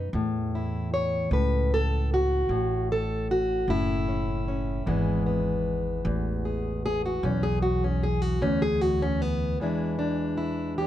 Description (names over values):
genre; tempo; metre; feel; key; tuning
acoustic country blues, solo or duo; 51 BPM (dotted quarters); 12/8; straight; E mixolydian; A4 = 440 Hz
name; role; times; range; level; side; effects
fingerpicked plugged-in steel-string acoustic guitar; melody; 0.0-10.9 s; E2 to C#5; -26 LUFS; left 1 dB; plate reverb
upright bass; bass; 0.0-9.6 s; F#1 to E2; -28 LUFS; equal; none
room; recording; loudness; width
light reverb; dark, warm production; -24 LUFS; side -12 dB against mid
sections
0.0-9.6 A section; 9.6-10.9 B section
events
steel-string acoustic guitar solo 0.0-9.6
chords
0.1 A; 4.9 E7